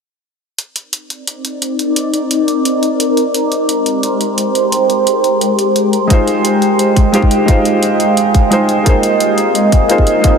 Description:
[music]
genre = liquid drum and bass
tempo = 174 BPM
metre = 4/4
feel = straight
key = C minor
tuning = A4 = 440 Hz
[part]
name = shimmering ambient pad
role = sustained chords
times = 1.4-10.4 s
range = Ab3 to Eb5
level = -14 LUFS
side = equal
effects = chorus, built-in reverb, phaser
[part]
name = electronic hi-hat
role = drums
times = 0.6-10.3 s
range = none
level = -20 LUFS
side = equal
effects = none
[part]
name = felt-muted upright piano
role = accompaniment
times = 6.1-10.4 s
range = Ab3 to C5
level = -14 LUFS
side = equal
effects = ping-pong delay
[part]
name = vibraphone with medium mallets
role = arpeggios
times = 6.1-10.4 s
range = Bb4 to Ab5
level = -18 LUFS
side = right 3 dB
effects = analog delay
[part]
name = electronic kick drum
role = drums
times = 6.1-10.3 s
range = none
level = -11 LUFS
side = left 1 dB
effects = none
[sound]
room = wet huge ambient reverb, RT60 7.7 s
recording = dreamy mix soaked in reverb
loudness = -11 LUFS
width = side -6 dB against mid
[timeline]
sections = 0.6-10.4 A section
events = filter sweep on ambient pad 0.6-10.4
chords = 0.6 Cm9; 3.2 Abmaj9; 6.1 Fm9; 8.9 Bb9sus4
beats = | 0.59 0.93 1.27 1.62 | 1.97 2.31 2.65 3.00 | 3.34 3.69 4.03 4.38 | 4.72 5.07 5.41 5.76 | 6.10 6.45 6.79 7.14 | 7.48 7.83 8.17 8.52 | 8.86 9.21 9.55 9.90 | 10.24

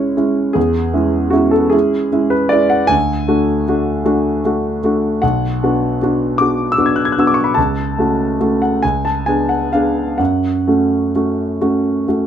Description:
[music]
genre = classical, romantic nocturne for solo piano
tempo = 41-53 BPM (dotted quarters)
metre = 6/8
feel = rubato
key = F# minor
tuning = A4 = 439 Hz
[part]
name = warm concert grand piano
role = solo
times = 0.0-12.3 s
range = B1 to G#6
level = -13 LUFS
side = equal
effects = none
[sound]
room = light reverb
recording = none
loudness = -13 LUFS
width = side -9 dB against mid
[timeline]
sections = 0.0-12.3 A section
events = none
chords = 0.0 C#m; 0.6 C#m/E; 2.9 D; 5.2 Bm; 7.6 F#m/C#; 8.8 C#5; 10.2 F#m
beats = | 0.56 1.74 | 2.91 4.05 | 5.22 6.39 | 7.57 8.82 | 10.19 11.62

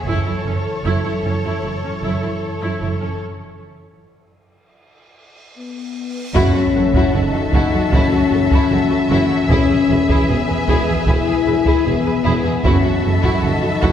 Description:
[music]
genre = cinematic, epic orchestral film score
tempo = 76 BPM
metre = 4/4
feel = straight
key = F# dorian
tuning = A4 = 440 Hz
[part]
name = warm symphonic violin section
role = melody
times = 0.0-13.9 s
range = C#5 to E5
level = -27 LUFS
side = left 3 dB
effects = none
[part]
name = warm symphonic violin section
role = second line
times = 0.0-13.9 s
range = E4 to B4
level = -26 LUFS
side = left 1 dB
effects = none
[part]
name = rich symphonic viola section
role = accompaniment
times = 0.1-13.9 s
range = C#4 to G#4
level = -26 LUFS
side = equal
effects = none
[part]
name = dark French horn section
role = sustained chords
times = 0.1-13.9 s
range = E3 to A4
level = -20 LUFS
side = left 5 dB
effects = none
[part]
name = rich studio double bass section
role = bass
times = 0.1-13.9 s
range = E1 to F#1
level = -24 LUFS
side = right 3 dB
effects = none
[part]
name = warm symphonic cello section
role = bass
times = 0.1-13.9 s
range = E2 to F#2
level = -24 LUFS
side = right 3 dB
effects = none
[part]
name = taiko ensemble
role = drums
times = 0.1-1.6, 6.4-13.9 s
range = none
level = -20 LUFS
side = right 1 dB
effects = none
[part]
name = cymbal swell and sub drop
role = sound effects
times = 5.4-9.5 s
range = none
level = -31 LUFS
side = right 1 dB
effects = none
[part]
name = warm symphonic string section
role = sustained chords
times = 6.3-13.9 s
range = E3 to A5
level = -26 LUFS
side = left 1 dB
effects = none
[part]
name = mellow tuba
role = bass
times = 6.4-13.9 s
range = E1 to F#1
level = -25 LUFS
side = right 3 dB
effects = none
[sound]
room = wet concert hall reverb, RT60 2.2 s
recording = heard from further back in the room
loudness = -14 LUFS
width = side -9 dB against mid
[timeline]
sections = 0.0-6.4 A section; 6.4-13.9 B section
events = build-up 0.0-6.4; break 3.2-6.4; cymbal swell 5.4-6.4; drum fill 5.6-6.4; impact 6.4-9.5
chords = 0.1 F#m7; 3.2 N.C.; 6.4 F#m7; 9.5 E; 12.6 F#m7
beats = | 0.07 0.85 1.64 2.43 | 3.21 4.00 4.79 5.57 | 6.36 7.14 7.93 8.71 | 9.50 10.29 11.07 11.86 | 12.64 13.43

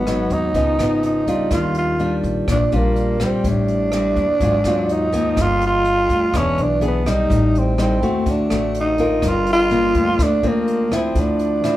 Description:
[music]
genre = bossa nova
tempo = 124 BPM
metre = 4/4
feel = straight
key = G minor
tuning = A4 = 440 Hz
[part]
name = growling tenor saxophone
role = melody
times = 0.0-11.8 s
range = Bb3 to F4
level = -19 LUFS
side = right 1 dB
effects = none
[part]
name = nylon-string guitar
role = accompaniment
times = 0.0-11.8 s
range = G2 to Bb4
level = -21 LUFS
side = left 2 dB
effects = none
[part]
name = upright bass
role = bass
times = 0.0-11.8 s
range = E1 to Eb2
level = -23 LUFS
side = equal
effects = none
[part]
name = jazz brush drum kit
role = drums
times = 0.1-11.8 s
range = hi-hat, kick drum, rim click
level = -28 LUFS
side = equal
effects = none
[sound]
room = moderate large studio reverb, RT60 0.9 s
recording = band playing live in one room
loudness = -16 LUFS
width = side -14 dB against mid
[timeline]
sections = 0.0-9.2 A section; 9.2-11.8 A section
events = none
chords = 0.0 Abm7; 0.5 C#9; 1.5 Ebmaj9; 3.4 Am7b5; 4.4 Ab13; 5.4 Gm7; 6.3 E7; 7.3 Am7b5; 8.3 D7; 9.2 Gm7; 11.2 Dm9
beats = 0.06 0.54 1.03 | 1.51 1.99 2.48 2.96 | 3.44 3.92 4.41 4.89 | 5.37 5.85 6.34 6.82 | 7.30 7.78 8.27 8.75 | 9.23 9.71 10.19 10.67 | 11.15 11.64

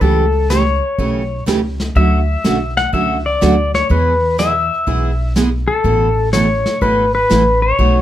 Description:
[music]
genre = country, western swing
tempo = 123 BPM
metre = 4/4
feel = swing 67% on 8ths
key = A major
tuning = A4 = 438 Hz
[part]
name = pedal steel guitar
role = melody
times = 0.0-8.0 s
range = A4 to F#5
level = -16 LUFS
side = left 3 dB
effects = plate reverb
[part]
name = picked steel-string acoustic guitar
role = accompaniment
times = 0.0-8.0 s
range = B2 to A4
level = -18 LUFS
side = right 3 dB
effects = none
[part]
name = upright bass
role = bass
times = 0.0-8.0 s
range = G#1 to E2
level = -18 LUFS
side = equal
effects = none
[part]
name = vintage brush drum kit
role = drums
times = 0.0-8.0 s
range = brushed snare drum, hi-hat, kick drum, snare drum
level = -23 LUFS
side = equal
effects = none
[sound]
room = moderate club reverb, RT60 0.6 s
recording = none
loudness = -13 LUFS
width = side -12 dB against mid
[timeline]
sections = 0.0-8.0 A section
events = none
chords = 0.0 A7/C#; 2.0 Dmaj7; 3.9 E; 5.8 Asus2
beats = | 0.01 0.50 0.98 1.47 | 1.96 2.44 2.93 3.42 | 3.90 4.39 4.87 5.36 | 5.85 6.33 6.82 7.30 | 7.79

